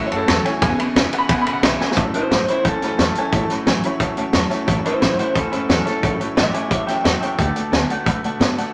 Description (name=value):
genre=rockabilly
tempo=177 BPM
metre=4/4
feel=straight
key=A major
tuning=A4 = 440 Hz
part: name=electric guitar through a small old amp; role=melody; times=0.0-8.4 s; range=C#4 to B5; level=-25 LUFS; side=equal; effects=spring reverb
part: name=picked steel-string acoustic guitar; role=accompaniment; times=0.0-8.7 s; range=A2 to B4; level=-30 LUFS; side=equal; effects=none
part: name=tack piano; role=accompaniment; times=0.0-8.7 s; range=B4 to B5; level=-29 LUFS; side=equal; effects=none
part: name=electric guitar through a small old amp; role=riff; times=0.0-8.7 s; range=E2 to B3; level=-28 LUFS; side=equal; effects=tremolo
part: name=upright bass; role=bass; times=0.0-8.6 s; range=E1 to B2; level=-30 LUFS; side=equal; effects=none
part: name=vintage drum kit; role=drums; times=0.1-8.7 s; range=hi-hat, kick drum, ride cymbal, snare drum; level=-22 LUFS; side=equal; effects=none
room=moderate large studio reverb, RT60 0.9 s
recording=none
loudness=-19 LUFS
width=mono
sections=0.0-2.0 A section; 2.0-8.7 B section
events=clean electric guitar solo 0.0-2.0; drum fill 1.8; honky-tonk piano fill 4.0-4.7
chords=0.0 A6; 0.6 E6; 2.0 A6; 7.4 D6